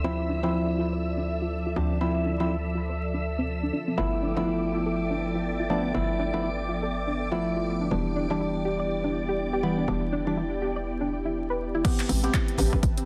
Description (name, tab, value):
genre	deep house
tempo	122 BPM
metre	4/4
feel	swing 59% on 16ths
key	D dorian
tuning	A4 = 441 Hz
part	warm analog pad	sustained chords	0.0-13.1 s	F3 to A5	-36 LUFS	equal	chorus, sidechain pumping
part	soft round pluck	arpeggios	0.0-13.0 s	B3 to D5	-35 LUFS	equal	chorus, sidechain pumping, tape echo
part	percussive organ stab	stabs	0.0-13.1 s	E3 to G4	-31 LUFS	equal	chorus, sidechain pumping, tape echo
part	hollow knocking FM bass	bass	0.0-12.9 s	E1 to D2	-34 LUFS	equal	sidechain pumping
part	soft string machine	texture	0.0-11.9 s	D5 to E6	-39 LUFS	equal	phaser, ensemble chorus
part	electronic kick drum	drums	11.8-12.9 s	none	-27 LUFS	equal	overdrive
part	punchy analog drum machine	drums	11.8-13.1 s	crash cymbal, handclaps, hi-hat	-35 LUFS	equal	overdrive, low-pass filter on hats, low-pass filter on cymbals, low-pass filter on snare
part	congas	percussion	12.1-12.8 s	none	-39 LUFS	equal	none
room	light reverb, digital ambience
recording	dense, heavily limited modern master, vinyl crackle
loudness	-27 LUFS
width	mono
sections	0.0-11.8 A section; 11.8-13.1 B section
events	filter sweep on synth arpeggio sound 0.0-11.8; drop 11.8-13.1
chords	0.0 Dm9; 4.0 G13; 7.9 Em7; 11.8 Am9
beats	| 0.04 0.54 1.03 1.52 | 2.01 2.50 2.99 3.49 | 3.98 4.47 4.96 5.45 | 5.95 6.44 6.93 7.42 | 7.91 8.40 8.90 9.39 | 9.88 10.37 10.86 11.36 | 11.85 12.34 12.83